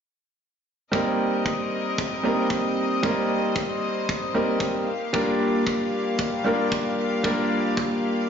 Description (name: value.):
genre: nu-disco, nu disco.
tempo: 114 BPM.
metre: 4/4.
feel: swing 55% on 16ths.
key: C minor.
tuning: A4 = 440 Hz.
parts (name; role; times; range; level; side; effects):
clear grand piano; accompaniment; 0.9-8.3 s; G3 to Bb4; -24 LUFS; equal; vintage 12-bit sampler grit, slapback echo.
rich studio string section; sustained chords; 0.9-8.3 s; Bb3 to F5; -29 LUFS; left 2 dB; sidechain pumping.
kick drum; drums; 0.9-7.9 s; none; -29 LUFS; equal; high-pass filter on kick, high-pass filter on snare, high-pass filter on room.
room: moderate lush hall reverb, RT60 1.9 s, small room ambience.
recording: played on a big sound system in a bare room, stone room reverb, nothing above 7.5 kHz.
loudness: -22 LUFS.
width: side -7 dB against mid.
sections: 0.9-8.3 A section.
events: none.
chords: 0.9 Cm7; 4.9 Gm7.